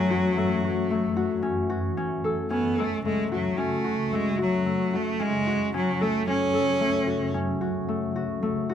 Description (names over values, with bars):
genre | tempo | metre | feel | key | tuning
contemporary instrumental, chamber music in an uneven meter | 112 BPM | 7/4 | straight | F# minor | A4 = 439 Hz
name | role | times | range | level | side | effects
clear cello | melody | 0.0-7.3 s | F#3 to C#4 | -25 LUFS | right 1 dB | none
granular cloud pad | sustained chords | 0.0-8.7 s | F#2 to A3 | -32 LUFS | right 1 dB | built-in reverb
concert harp | arpeggios | 0.0-8.7 s | A3 to A4 | -27 LUFS | left 4 dB | none
room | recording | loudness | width
light reverb | none | -23 LUFS | side -9 dB against mid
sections
0.0-2.0 A section; 2.0-8.7 B section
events
none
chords
0.0 F#m7; 2.0 F#m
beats
0.36 0.90 1.44 | 1.98 2.52 3.05 3.59 4.13 4.67 5.21 | 5.74 6.28 6.82 7.36 7.89 8.43